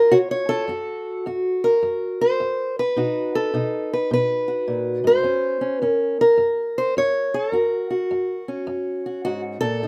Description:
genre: acoustic country blues, solo or duo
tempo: 105 BPM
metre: 4/4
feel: swing 64% on 8ths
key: unclear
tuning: A4 = 438 Hz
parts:
  - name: fingerpicked acoustic archtop guitar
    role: solo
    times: 0.0-9.9 s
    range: F#2 to C#5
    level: -22 LUFS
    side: equal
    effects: none
room: moderate studio reverb, RT60 0.7 s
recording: none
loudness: -22 LUFS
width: mono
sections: 0.7-9.9 A section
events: none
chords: 0.0 C#; 0.7 N.C.; 3.0 B; 5.2 F#

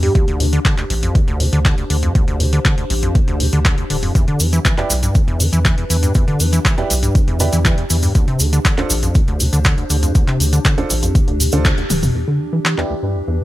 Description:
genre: acid house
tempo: 120 BPM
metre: 4/4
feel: straight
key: unclear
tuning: A4 = 442 Hz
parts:
  - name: acid bass, square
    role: riff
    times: 0.0-13.4 s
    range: C2 to E3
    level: -20 LUFS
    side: equal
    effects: overdrive, sidechain pumping, digital delay
  - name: saturated sub bass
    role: bass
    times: 0.0-12.1 s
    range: D1 to E2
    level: -17 LUFS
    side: equal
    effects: sidechain pumping
  - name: punchy analog drum machine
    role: drums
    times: 0.0-12.9 s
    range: handclaps, hi-hat, toms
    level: -22 LUFS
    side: left 1 dB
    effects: overdrive
  - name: warbly tape-like pad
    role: texture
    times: 0.0-13.4 s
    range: E3 to C5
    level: -27 LUFS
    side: left 2 dB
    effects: chorus, built-in reverb, phaser, sidechain pumping
  - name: electronic kick drum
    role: drums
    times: 0.2-11.8 s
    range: none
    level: -15 LUFS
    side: equal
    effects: overdrive
  - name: cabasa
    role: percussion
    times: 4.2-12.1 s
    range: none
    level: -23 LUFS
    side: right 1 dB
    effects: none
  - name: clear grand piano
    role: stabs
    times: 4.8-12.9 s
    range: D4 to D5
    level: -24 LUFS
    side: right 4 dB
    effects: low-pass filter, digital delay
room: little or no reverb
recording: none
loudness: -14 LUFS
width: side -16 dB against mid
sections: 0.0-12.2 A section; 12.2-13.4 B section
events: band accent 11.7; drum fill 11.9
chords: 0.2 D7(no3); 4.2 Em7; 8.2 Dm7; 12.2 Em7

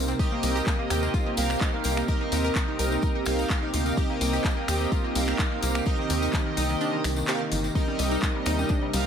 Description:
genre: progressive house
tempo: 127 BPM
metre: 4/4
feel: straight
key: unclear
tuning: A4 = 441 Hz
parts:
  - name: lush unison pad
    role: sustained chords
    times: 0.0-9.1 s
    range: C3 to G4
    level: -32 LUFS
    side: equal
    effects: chorus, sidechain pumping
  - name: wide unison pluck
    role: arpeggios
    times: 0.0-9.0 s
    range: Eb3 to Bb4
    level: -31 LUFS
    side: equal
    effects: analog chorus, sidechain pumping, tape echo
  - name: tight sequencer bass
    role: bass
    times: 0.0-9.1 s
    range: G1 to Eb2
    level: -28 LUFS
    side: equal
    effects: sidechain pumping
  - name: tambourine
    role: percussion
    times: 0.1-9.0 s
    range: none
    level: -38 LUFS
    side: left 4 dB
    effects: none
  - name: chorused polysynth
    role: stabs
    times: 0.2-9.1 s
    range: C3 to F5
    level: -29 LUFS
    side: right 2 dB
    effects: sidechain pumping, tape echo
  - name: electronic kick drum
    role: drums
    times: 0.2-8.8 s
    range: none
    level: -26 LUFS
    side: equal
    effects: studio reverb
  - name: pop drum kit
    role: drums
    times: 0.4-9.0 s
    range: finger snaps, handclaps, hi-hat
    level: -32 LUFS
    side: left 1 dB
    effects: studio reverb
  - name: congas and bongos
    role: percussion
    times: 7.9-9.0 s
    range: none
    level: -39 LUFS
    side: right 3 dB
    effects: none
room: light reverb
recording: none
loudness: -23 LUFS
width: side -8 dB against mid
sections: 0.0-9.1 A section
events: kick drops out 6.8-7.8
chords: 0.2 Eb/C; 7.8 Cm7

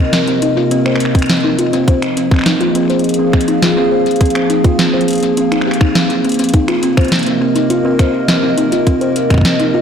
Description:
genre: IDM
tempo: 103 BPM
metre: 4/4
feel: straight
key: C minor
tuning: A4 = 440 Hz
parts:
  - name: warbly tape-like pad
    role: sustained chords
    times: 0.0-9.8 s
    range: C3 to F5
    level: -16 LUFS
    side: equal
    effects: chorus, built-in reverb, sidechain pumping
  - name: buzzing kalimba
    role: arpeggios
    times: 0.1-9.8 s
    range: C4 to C5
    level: -15 LUFS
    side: equal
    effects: ping-pong delay
  - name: electro analog drum machine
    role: drums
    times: 0.1-9.7 s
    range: finger snaps, hi-hat, snare drum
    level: -18 LUFS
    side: equal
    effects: ping-pong delay
  - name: electronic kick drum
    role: drums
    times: 1.1-9.4 s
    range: none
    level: -11 LUFS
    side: equal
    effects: none
room: moderate plate reverb, RT60 1.8 s, digital ambience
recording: blown-out, overdriven recording, overdrive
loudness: -11 LUFS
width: side -7 dB against mid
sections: 0.0-9.8 A section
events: none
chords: 0.0 Cm7; 1.9 Fm; 6.5 Cm7

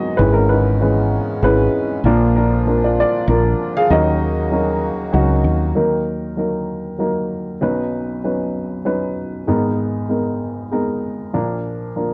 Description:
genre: acoustic folk-pop ballad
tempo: 97 BPM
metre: 3/4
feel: straight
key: Eb minor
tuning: A4 = 439 Hz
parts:
  - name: dark grand piano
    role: melody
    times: 0.0-12.1 s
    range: Ab1 to F5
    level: -20 LUFS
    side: equal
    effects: none
  - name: pedal harmonium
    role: sustained chords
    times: 0.0-5.8 s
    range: Bb2 to Gb4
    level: -28 LUFS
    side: equal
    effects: none
  - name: woody fretless electric bass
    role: bass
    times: 0.2-5.7 s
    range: G#1 to Eb2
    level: -20 LUFS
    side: equal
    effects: none
room: light reverb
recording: worn, warbling old tape, cassette tape, warbly pitch drift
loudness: -18 LUFS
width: mono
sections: 0.0-5.8 A section; 5.8-12.1 B section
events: none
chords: 0.2 E6/G#; 2.0 Bb; 3.9 Ebm7; 5.8 Ebm; 7.6 Badd9; 9.5 Abmadd9; 11.3 Bb

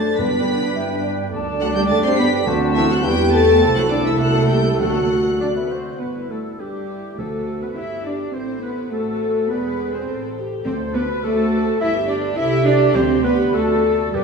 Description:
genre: quick classical-period movement for symphony orchestra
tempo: 104 BPM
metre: 2/4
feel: straight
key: G major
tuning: A4 = 440 Hz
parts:
  - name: warm chamber violin section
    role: melody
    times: 0.0-14.2 s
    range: F#4 to C7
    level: -31 LUFS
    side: left 1 dB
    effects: none
  - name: dark clarinet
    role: second line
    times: 0.0-14.2 s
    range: D4 to E5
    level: -28 LUFS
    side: left 2 dB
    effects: none
  - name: warm chamber violin section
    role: second line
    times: 0.0-14.2 s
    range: G4 to C6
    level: -31 LUFS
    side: left 2 dB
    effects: none
  - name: warm oboe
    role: second line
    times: 0.0-14.2 s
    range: G4 to E5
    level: -30 LUFS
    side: equal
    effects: none
  - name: mellow bassoon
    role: accompaniment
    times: 0.0-6.0 s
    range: B3 to F#4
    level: -26 LUFS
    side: right 1 dB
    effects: none
  - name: warm chamber viola section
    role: accompaniment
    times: 0.0-14.2 s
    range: A3 to C5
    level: -25 LUFS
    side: right 3 dB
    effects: none
  - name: mellow French horn section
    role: sustained chords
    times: 0.0-14.2 s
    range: D4 to D5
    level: -24 LUFS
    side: left 3 dB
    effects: none
  - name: dark studio double bass section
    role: bass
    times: 0.0-14.2 s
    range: E1 to G2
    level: -26 LUFS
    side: right 2 dB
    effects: none
  - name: bright large flute ensemble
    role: second line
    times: 0.2-14.2 s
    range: G4 to A5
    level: -29 LUFS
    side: equal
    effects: none
  - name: warm studio cello section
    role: bass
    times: 0.2-14.2 s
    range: D3 to E4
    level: -24 LUFS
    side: right 2 dB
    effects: none
  - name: timpani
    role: percussion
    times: 0.2-7.7, 10.7-14.2 s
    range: G2 to D3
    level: -30 LUFS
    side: right 1 dB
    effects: none
room: wet concert hall reverb, RT60 2.3 s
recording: small room ambience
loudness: -16 LUFS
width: side -5 dB against mid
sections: 0.0-6.0 A section; 6.0-14.2 B section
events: none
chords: 0.2 G; 1.3 D; 1.9 G; 2.5 D7; 3.0 Em; 3.6 Am7/C; 4.8 D; 6.0 G; 7.2 D7; 7.8 G; 8.3 Am; 9.5 E7; 10.1 Am; 10.7 D7; 11.8 G; 12.4 Am/C; 13.0 G/D; 13.5 D

